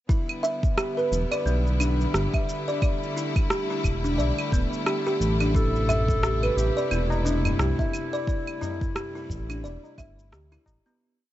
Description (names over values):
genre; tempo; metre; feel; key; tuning
organic downtempo; 88 BPM; 4/4; swing 58% on 16ths; E minor; A4 = 440 Hz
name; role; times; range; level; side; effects
clear studio string section; sustained chords; 0.1-11.0 s; C3 to E4; -32 LUFS; equal; sidechain pumping
buzzing kalimba; arpeggios; 0.1-11.0 s; B3 to E5; -28 LUFS; equal; ping-pong delay
electronic kick drum; drums; 0.1-10.8 s; none; -25 LUFS; equal; none
electronic shaker, claves and rim click; drums; 0.1-11.0 s; none; -32 LUFS; right 1 dB; none
smooth synth bass; bass; 1.1-10.8 s; D1 to D2; -25 LUFS; equal; sidechain pumping
dark clarinet; melody; 5.6-10.3 s; E4 to A4; -31 LUFS; left 1 dB; tape echo
tabla; percussion; 5.9-11.0 s; none; -34 LUFS; left 2 dB; none
room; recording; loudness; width
small room ambience; dark, warm production, nothing above 7.8 kHz; -23 LUFS; side -14 dB against mid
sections
0.1-11.0 groove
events
fade-out 7.4-11.0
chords
0.1 Em7; 5.5 Am7